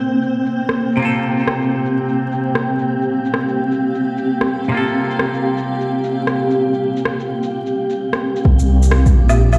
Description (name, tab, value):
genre	future garage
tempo	129 BPM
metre	4/4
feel	swing 63% on 16ths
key	unclear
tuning	A4 = 441 Hz
part	semi-hollow electric guitar	accompaniment	0.0-8.5 s	C3 to Bb4	-25 LUFS	equal	sidechain pumping, tape echo
part	granular cloud pad	sustained chords	0.0-9.6 s	Bb3 to F5	-21 LUFS	equal	built-in reverb, sidechain pumping
part	wind-like tuned noise texture	texture	0.0-9.6 s	G5 to D6	-31 LUFS	equal	built-in reverb
part	electronic shaker, rim click and woodblock	drums	0.2-9.6 s	none	-24 LUFS	equal	low-pass filter on perc, studio reverb, low-pass filter on snare
part	electronic kick drum	drums	8.4-9.1 s	none	-15 LUFS	equal	studio reverb
part	swelling detuned saw bass	bass	8.5-9.6 s	Bb1 to C2	-14 LUFS	equal	sidechain pumping
room	moderate lush hall reverb, RT60 1.9 s, digital ambience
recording	played on a big sound system in a bare room, large studio reverb, vinyl crackle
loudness	-18 LUFS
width	mono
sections	0.0-8.5 A section; 8.5-9.6 B section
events	none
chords	0.0 Cm9; 1.0 Gm7; 8.5 C7sus2